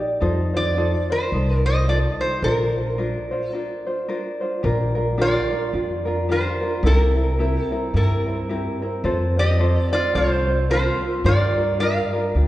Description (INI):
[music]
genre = Hawaiian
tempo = 109 BPM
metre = 4/4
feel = swing 59% on 8ths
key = Bb major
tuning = A4 = 440 Hz
[part]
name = tenor ukulele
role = accompaniment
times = 0.0-12.5 s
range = C4 to D5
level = -25 LUFS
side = equal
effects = none
[part]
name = upright bass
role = bass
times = 0.2-12.5 s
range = Bb1 to G2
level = -22 LUFS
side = equal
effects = none
[part]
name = metal-body resonator slide guitar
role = melody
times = 0.6-12.5 s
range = E4 to F5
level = -23 LUFS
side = right 1 dB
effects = analog delay
[sound]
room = wet recital hall reverb, RT60 1.8 s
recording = heard from further back in the room, nothing above 10.4 kHz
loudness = -19 LUFS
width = side -15 dB against mid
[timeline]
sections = 0.0-4.6 A section; 4.6-12.5 A section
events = break 3.5-4.6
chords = 0.2 F7; 2.4 Bbadd9; 4.6 Bb6; 6.8 C7; 9.0 F; 11.3 Gm7